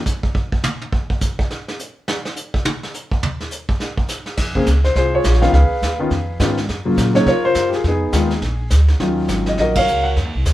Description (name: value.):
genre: jazz piano trio.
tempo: 208 BPM.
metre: 4/4.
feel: swing 60% on 8ths.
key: Bb minor from 4.4 s.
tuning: A4 = 440 Hz.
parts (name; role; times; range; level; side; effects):
vintage brush drum kit; drums; 0.1-10.5 s; brushed snare drum, crash cymbal, hi-hat, kick drum, ride cymbal, snare drum, toms; -22 LUFS; right 1 dB; none.
upright bass; bass; 4.4-10.5 s; Ab1 to Db3; -18 LUFS; equal; none.
dark concert grand piano; melody; 4.6-10.1 s; Db3 to Gb5; -17 LUFS; left 1 dB; none.
room: moderate studio reverb, RT60 0.7 s.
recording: band playing live in one room.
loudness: -16 LUFS.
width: side -15 dB against mid.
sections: 0.0-4.4 A section; 4.4-10.5 B section.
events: drum solo 0.0-4.4; band accent 9.7.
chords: 0.0 N.C.; 4.4 Bbm9; 5.5 Db9; 6.7 Gbmaj7; 7.8 Fm7b5; 8.4 Bb7; 9.0 Ebm9.